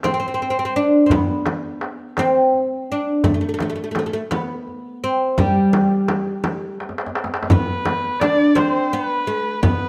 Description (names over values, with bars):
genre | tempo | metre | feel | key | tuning
Persian modal ensemble | 56 BPM (dotted quarters) | 6/8 | straight | unclear | A4 = 440 Hz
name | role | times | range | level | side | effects
oud | melody | 0.0-9.9 s | G3 to D4 | -21 LUFS | equal | none
tombak | percussion | 0.0-9.8 s | none | -25 LUFS | equal | none
frame drum | percussion | 0.1-9.8 s | none | -26 LUFS | equal | none
rich kamancheh | second line | 7.5-9.9 s | B4 to D5 | -25 LUFS | equal | none
room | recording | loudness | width
moderate recital hall reverb, RT60 1.3 s | close, detailed microphones | -19 LUFS | mono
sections
0.0-7.5 A section; 7.5-9.9 B section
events
drum fill 6.8-7.5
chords
none